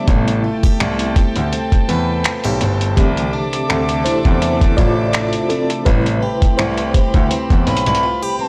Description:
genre	contemporary R&B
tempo	83 BPM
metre	4/4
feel	swing 54% on 16ths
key	unclear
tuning	A4 = 443 Hz
part	FM electric piano with tremolo	accompaniment	0.0-8.5 s	C3 to D5	-24 LUFS	equal	none
part	warm studio string section	sustained chords	0.0-8.5 s	C4 to D6	-30 LUFS	equal	none
part	picked plugged-in swing-style acoustic guitar	arpeggios	0.0-8.5 s	C3 to B4	-25 LUFS	equal	tape echo
part	warm baby grand piano	bass	0.1-8.0 s	G1 to E2	-22 LUFS	equal	none
part	dusty soul sampler-style drum kit	drums	0.1-8.0 s	finger snaps, hi-hat, kick drum	-18 LUFS	equal	vintage 12-bit sampler grit, soft clipping on snare
part	gliding portamento lead	melody	7.7-8.5 s	A5 to B5	-20 LUFS	equal	chorus
room	studio reverb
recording	blown-out, overdriven recording, overdrive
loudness	-16 LUFS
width	mono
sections	0.0-8.5 A section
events	FM electric piano solo 0.0-8.5; break 8.0-8.5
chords	0.0 Am9; 3.0 C69; 5.9 Am9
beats	| 0.08 0.80 1.52 2.25 | 2.97 3.69 4.42 5.14 | 5.86 6.58 7.31 8.03

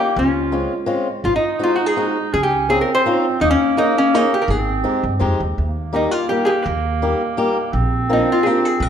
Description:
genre	musette waltz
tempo	167 BPM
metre	3/4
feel	straight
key	Ab major, Eb major from 5.6 s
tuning	A4 = 439 Hz
part	archtop guitar, miked and amplified	melody	0.0-8.9 s	Db4 to C5	-18 LUFS	left 1 dB	none
part	warm clarinet	second line	0.0-8.9 s	Bb3 to F4	-22 LUFS	right 4 dB	none
part	upright bass	bass	0.2-8.9 s	Ab1 to G2	-22 LUFS	equal	none
part	fingerpicked swing-style acoustic guitar	accompaniment	0.5-8.6 s	G3 to Ab4	-22 LUFS	left 2 dB	none
room	wet recital hall reverb, RT60 1.7 s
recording	minimal, uncompressed stereo recording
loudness	-16 LUFS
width	side -8 dB against mid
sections	0.0-5.6 A section; 5.6-8.9 B section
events	none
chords	0.2 Dbmaj7; 1.3 Ab7; 2.3 Dbmaj9; 3.4 Eb7sus4; 4.5 Abmaj7; 5.6 Eb; 7.7 Bbadd9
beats	| 0.17 0.53 0.90 | 1.26 1.62 1.98 | 2.34 2.70 3.06 | 3.41 3.77 4.13 | 4.48 4.84 5.21 | 5.58 5.94 6.30 | 6.66 7.02 7.38 | 7.74 8.10 8.45 | 8.81

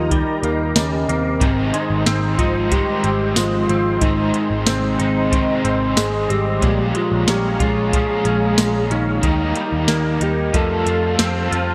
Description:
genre	dream pop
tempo	92 BPM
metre	4/4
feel	straight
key	unclear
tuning	A4 = 442 Hz
part	soft octave-layered synth lead	melody	0.0-11.5 s	C4 to A4	-24 LUFS	equal	chorus, delay
part	warbly tape-like pad	sustained chords	0.0-11.7 s	Ab3 to C6	-27 LUFS	equal	chorus, built-in reverb
part	direct-recorded clean electric guitar	arpeggios	0.0-11.7 s	Ab2 to F4	-27 LUFS	equal	ensemble chorus, delay
part	vintage muted picked electric bass	bass	0.0-11.7 s	Ab1 to F2	-25 LUFS	equal	none
part	soft vintage rhythm box	drums	0.1-11.7 s	hi-hat, kick drum, snare drum, tambourine	-23 LUFS	equal	gated reverb
part	overdriven electric guitar	accompaniment	1.4-11.7 s	Ab2 to A4	-29 LUFS	equal	tremolo, ensemble chorus
room	moderate lush hall reverb, RT60 2.3 s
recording	bright 1980s-style digital production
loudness	-18 LUFS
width	mono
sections	0.0-11.7 A section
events	none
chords	0.0 Eb; 1.4 Ab; 6.6 Bbm7; 9.2 Eb; 10.5 Fadd9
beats	0.10 0.75 | 1.41 2.06 2.71 3.36 | 4.01 4.67 5.32 5.97 | 6.62 7.28 7.93 8.58 | 9.23 9.88 10.54 11.19

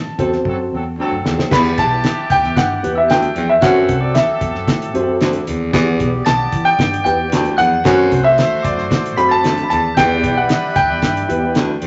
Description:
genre	uptempo 1960s-style soul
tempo	114 BPM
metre	4/4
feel	straight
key	E minor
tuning	A4 = 440 Hz
part	warm concert grand piano	melody	0.0-11.9 s	D5 to B5	-19 LUFS	equal	none
part	vintage muted fingered electric bass	bass	0.0-11.9 s	B1 to E3	-27 LUFS	equal	none
part	warm horn section	second line	0.2-11.8 s	E3 to D5	-28 LUFS	equal	none
part	tine electric piano	accompaniment	0.2-11.7 s	B3 to C5	-23 LUFS	equal	overdrive
part	cloth-damped thuddy drum kit	drums	0.2-11.9 s	crash cymbal, hi-hat, kick drum, snare drum	-22 LUFS	equal	none
part	warm baritone saxophone	riff	1.0-11.9 s	D2 to F#2	-21 LUFS	equal	none
part	glockenspiel with soft plastic mallets	second line	1.5-11.9 s	D6 to B6	-30 LUFS	equal	none
room	wet large studio reverb, RT60 0.9 s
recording	nothing above 7.8 kHz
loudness	-16 LUFS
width	mono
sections	0.0-1.5 A section; 1.5-11.9 B section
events	band accent 0.0-1.5; drum fill 0.5-1.5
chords	0.0 F#dim; 1.5 Em; 3.6 F#dim; 5.7 Em; 7.9 F#dim; 10.0 Em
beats	0.45 0.98 | 1.51 2.04 2.56 3.09 | 3.62 4.15 4.68 5.21 | 5.74 6.26 6.79 7.32 | 7.85 8.38 8.91 9.44 | 9.97 10.50 11.03 11.56

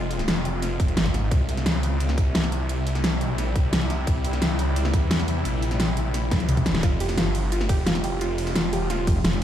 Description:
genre	dark technical drum and bass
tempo	174 BPM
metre	4/4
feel	straight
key	F harmonic minor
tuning	A4 = 438 Hz
part	swarming drone	sustained chords	0.0-9.4 s	C3 to F4	-30 LUFS	left 1 dB	built-in reverb, sidechain pumping
part	snarling distorted saw bass	bass	0.0-9.1 s	F1 to E2	-25 LUFS	equal	distortion, overdrive, sidechain pumping
part	dubstep drum kit	drums	0.1-9.4 s	hi-hat, ride cymbal, snare drum, toms	-26 LUFS	equal	overdrive
part	electronic kick drum	drums	0.8-9.1 s	none	-22 LUFS	equal	none
part	soft round pluck	arpeggios	6.8-9.4 s	F4 to G4	-30 LUFS	right 2 dB	chorus, cassette tape, sidechain pumping, ping-pong delay
part	metallic wobble bass	bass	9.1-9.4 s	F1	-24 LUFS	equal	chorus
room	light reverb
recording	played on a big sound system in a bare room, stone room reverb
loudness	-21 LUFS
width	side -10 dB against mid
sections	0.0-9.4 A section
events	drum fill 6.3-6.8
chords	0.0 Fm; 1.3 C; 6.8 Fm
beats	0.28 0.62 0.97 | 1.31 1.66 2.00 2.35 | 2.69 3.04 3.38 3.73 | 4.07 4.42 4.76 5.11 | 5.45 5.80 6.14 6.49 | 6.83 7.18 7.52 7.87 | 8.21 8.56 8.90 9.24

